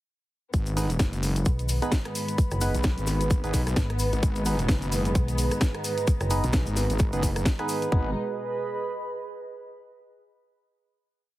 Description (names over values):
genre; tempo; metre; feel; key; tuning
bass house; 130 BPM; 4/4; swing 57% on 16ths; G# minor; A4 = 439 Hz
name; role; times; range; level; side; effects
dark studio string section; sustained chords; 0.5-8.1 s; G#2 to D#4; -33 LUFS; left 1 dB; sidechain pumping, low-pass filter
wobble bass; bass; 0.5-8.1 s; F#1 to B1; -27 LUFS; equal; chorus, tube saturation, sidechain pumping
electronic kick drum; drums; 0.5-8.0 s; none; -23 LUFS; equal; none
garage drum kit; drums; 0.5-7.9 s; hi-hat, rim click, snare drum; -32 LUFS; equal; none
tube shaker; percussion; 0.5-7.9 s; none; -38 LUFS; left 4 dB; none
warbly tape-like pad; texture; 1.4-9.7 s; G#4 to B5; -34 LUFS; right 3 dB; chorus, built-in reverb, sidechain pumping
percussive organ stab; stabs; 0.8-8.1 s; B3 to B4; -32 LUFS; right 2 dB; chorus, sidechain pumping, dub echo
metallic FM bass; bass; 1.5-6.4 s; F#1 to B1; -27 LUFS; equal; sidechain pumping
room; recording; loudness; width
light reverb; heavily compressed radio sound, multiband compression; -23 LUFS; side -16 dB against mid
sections
0.5-7.9 drop; 7.9-9.8 final chord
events
drop 0.5-7.9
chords
0.5 G#m